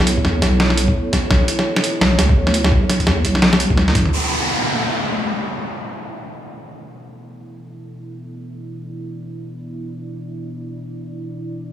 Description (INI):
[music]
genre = half-time drum and bass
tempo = free time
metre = none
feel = none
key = B minor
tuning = A4 = 440 Hz
[part]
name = dark analog pad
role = sustained chords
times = 0.0-11.7 s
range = B3 to D5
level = -26 LUFS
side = right 1 dB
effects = chorus, sidechain pumping
[part]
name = deep soft wobble bass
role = bass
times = 0.0-4.1 s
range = A1 to E2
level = -18 LUFS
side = equal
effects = chorus, tube saturation
[part]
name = boom bap sampler-style drum kit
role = drums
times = 0.0-4.1 s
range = hi-hat, snare drum, toms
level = -17 LUFS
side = equal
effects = low-pass filter on snare, low-pass filter on hats, low-pass filter on toms, low-pass filter on room
[part]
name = electronic kick drum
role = drums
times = 0.2-4.0 s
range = none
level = -19 LUFS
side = equal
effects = none
[part]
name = downlifter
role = sound effects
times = 4.1-7.0 s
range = none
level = -21 LUFS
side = equal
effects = none
[sound]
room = light reverb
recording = studio reverb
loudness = -14 LUFS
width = side -11 dB against mid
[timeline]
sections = 0.0-4.1 A section; 4.1-11.7 B section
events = drum fill 3.9; filter sweep on analog synth pad 4.1-11.7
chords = 0.0 Bsus2; 4.1 Bm